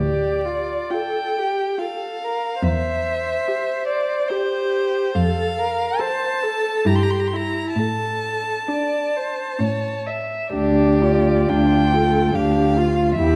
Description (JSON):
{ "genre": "classical, slow romantic movement for string quartet", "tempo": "59-74 BPM", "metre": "3/4", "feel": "rubato", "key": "D minor", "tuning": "A4 = 439 Hz", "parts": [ { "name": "rich violin", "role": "melody", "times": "0.0-13.4 s", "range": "C5 to C6", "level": "-27 LUFS", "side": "equal", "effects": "none" }, { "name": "dark violin", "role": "second line", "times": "0.0-13.4 s", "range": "E4 to E5", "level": "-26 LUFS", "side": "equal", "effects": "none" }, { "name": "rich cello", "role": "bass", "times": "0.0-13.4 s", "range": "D2 to A2", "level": "-24 LUFS", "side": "equal", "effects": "none" }, { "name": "rich viola", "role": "accompaniment", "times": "0.9-13.4 s", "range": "C#4 to A4", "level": "-26 LUFS", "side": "equal", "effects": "none" } ], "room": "wet recital hall reverb, RT60 1.5 s", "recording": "dark, warm production, vinyl crackle", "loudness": "-21 LUFS", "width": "mono", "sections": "0.0-13.4 A section", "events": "none", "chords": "0.0 Dm; 2.6 C/E; 5.2 F; 6.9 Edim/G; 7.8 D5/A; 9.6 A; 10.5 Dm", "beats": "0.92 1.79 | 2.64 3.49 4.30 | 5.16 6.00 6.87 | 7.77 8.69 9.60 | 10.54 11.51 12.36 | 13.18" }